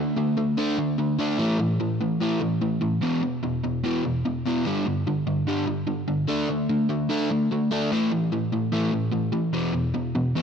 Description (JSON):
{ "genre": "rock", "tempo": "147 BPM", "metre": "4/4", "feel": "straight", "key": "unclear", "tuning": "A4 = 443 Hz", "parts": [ { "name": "crunchy overdriven guitar", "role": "solo", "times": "0.0-10.4 s", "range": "E2 to D4", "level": "-22 LUFS", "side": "equal", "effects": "none" } ], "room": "light reverb, digital ambience", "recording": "dark, warm production", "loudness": "-22 LUFS", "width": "side -7 dB against mid", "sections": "0.0-10.4 A section", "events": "none", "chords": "0.0 D5; 1.4 A5; 3.0 E5; 4.7 G5; 6.3 D5; 7.9 A5; 9.5 E5" }